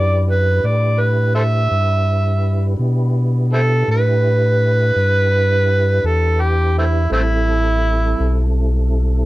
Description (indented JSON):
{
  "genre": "slow blues",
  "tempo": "56 BPM (dotted quarters)",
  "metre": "12/8",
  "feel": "straight",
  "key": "E minor",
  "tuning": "A4 = 440 Hz",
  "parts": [
    { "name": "overdriven harmonica", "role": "melody", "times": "0.0-8.5 s", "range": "A3 to E5", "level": "-18 LUFS", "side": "right 2 dB", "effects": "none" },
    { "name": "mellow tonewheel organ", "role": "sustained chords", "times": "0.0-9.3 s", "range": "G3 to B4", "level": "-26 LUFS", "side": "right 1 dB", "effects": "slow rotary speaker, chorus vibrato" },
    { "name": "sub bass with octave", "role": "bass", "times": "0.0-9.2 s", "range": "A1 to B2", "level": "-16 LUFS", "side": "equal", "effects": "none" }
  ],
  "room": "light reverb",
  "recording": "rough home demo mix",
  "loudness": "-14 LUFS",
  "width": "side -18 dB against mid",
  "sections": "0.0-9.3 A section",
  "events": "harmonica solo 0.0-9.3",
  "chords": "0.0 Em7; 7.1 Am7"
}